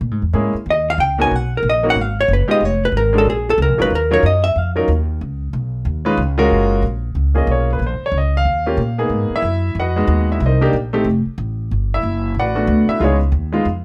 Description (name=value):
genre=jazz, small-group swing and bop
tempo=185 BPM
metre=4/4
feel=swing 62% on 8ths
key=F# major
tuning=A4 = 440 Hz
part: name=upright bass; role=bass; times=0.0-13.8 s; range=E#1 to A#2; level=-20 LUFS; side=equal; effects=none
part: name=clear grand piano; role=accompaniment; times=0.3-13.6 s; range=F#3 to F#5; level=-21 LUFS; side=equal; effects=none
part: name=vintage hollow-body jazz guitar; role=melody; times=0.7-4.7 s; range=G#4 to G#5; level=-19 LUFS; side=equal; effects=none
room=light reverb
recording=none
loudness=-17 LUFS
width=mono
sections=0.0-6.5 A section; 6.5-13.8 A section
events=hollow-body jazz guitar solo 0.0-6.5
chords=0.0 A#m7b5; 0.7 D#5; 1.3 G#m9; 2.6 C#6b9/E#; 3.3 A#m7; 3.9 D#m9; 5.2 C#9; 6.5 F#maj9; 7.8 A#madd9; 8.5 D#7; 9.1 G#m7; 10.4 Cm7; 11.1 F; 11.7 Gmaj9; 13.0 C#7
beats=| 0.02 0.34 0.67 0.99 | 1.32 1.64 1.97 2.29 | 2.62 2.94 3.27 3.59 | 3.92 4.24 4.57 4.89 | 5.21 5.54 5.86 6.19 | 6.51 6.84 7.16 7.49 | 7.81 8.14 8.46 8.79 | 9.12 9.44 9.77 10.09 | 10.41 10.74 11.06 11.39 | 11.71 12.04 12.36 12.69 | 13.01 13.34 13.66